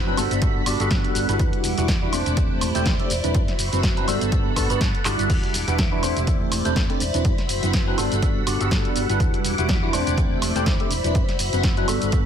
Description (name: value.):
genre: filtered disco house.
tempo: 123 BPM.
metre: 4/4.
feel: swing 56% on 16ths.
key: unclear.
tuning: A4 = 439 Hz.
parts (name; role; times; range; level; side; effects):
bell-like tine electric piano; accompaniment; 0.0-12.3 s; F#3 to D5; -25 LUFS; equal; medium stereo tremolo, phaser, vintage 12-bit sampler grit, sidechain pumping.
phased string machine; sustained chords; 0.0-12.3 s; E4 to D6; -28 LUFS; left 1 dB; ensemble chorus, phaser, sidechain pumping.
hollow-body short-scale fingered electric bass; bass; 0.0-12.3 s; E1 to G2; -26 LUFS; equal; sidechain pumping.
punchy analog drum machine; drums; 0.2-12.2 s; crash cymbal, handclaps, hi-hat, shaker, snare drum, woodblock; -27 LUFS; right 1 dB; sidechain pumping on hats, sidechain pumping on perc, sidechain pumping on cymbals.
electronic kick drum; drums; 0.4-12.2 s; none; -23 LUFS; equal; none.
room: light reverb.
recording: none.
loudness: -19 LUFS.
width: side -8 dB against mid.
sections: 0.0-12.3 A section.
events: drum fill 5.1.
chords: 0.2 Gmaj9; 1.4 Am11/E; 3.3 D13/F#; 4.1 Gmaj9; 5.3 Am11/E; 7.2 D13/F#; 8.0 Gmaj9; 9.2 Am11/E; 11.2 D13/F#.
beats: 0.42 0.91 | 1.40 1.88 2.37 2.86 | 3.35 3.83 4.32 4.81 | 5.30 5.79 6.27 6.76 | 7.25 7.74 8.22 8.71 | 9.20 9.69 10.18 10.66 | 11.15 11.64 12.13.